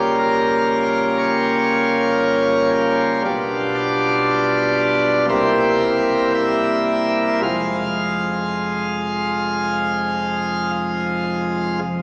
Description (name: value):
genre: classical, chorale-style piece for pipe organ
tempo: 54-59 BPM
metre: 4/4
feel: rubato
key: F minor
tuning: A4 = 439 Hz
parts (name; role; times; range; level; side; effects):
- pipe organ, plenum; solo; 0.0-12.0 s; F1 to F5; -19 LUFS; equal; none
room: wet church reverb, RT60 3.1 s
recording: heard from further back in the room, vinyl crackle, small speaker sound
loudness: -19 LUFS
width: mono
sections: 0.0-11.8 A section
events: none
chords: 0.0 Gm7b5/Db; 3.3 G7/B; 5.3 C7; 7.4 Fm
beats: 0.19 1.21 2.24 | 3.26 4.27 5.30 6.35 | 7.44 8.55 9.66 10.75 | 11.84